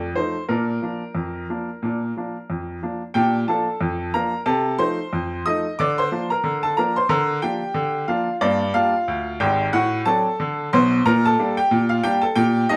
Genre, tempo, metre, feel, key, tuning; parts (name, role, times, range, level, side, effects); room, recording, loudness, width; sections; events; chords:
ragtime piano; 91 BPM; 2/4; swing 57% on 16ths; Bb major; A4 = 440 Hz
clear upright piano; solo; 0.0-12.8 s; Ab1 to Eb6; -22 LUFS; equal
light reverb; band playing live in one room; -22 LUFS; mono
0.0-3.1 A section; 3.1-12.8 B section
0.5 Bb; 4.5 F7/C; 5.8 Bb/D; 8.4 Gm; 9.7 D7/A; 11.0 Gm/Bb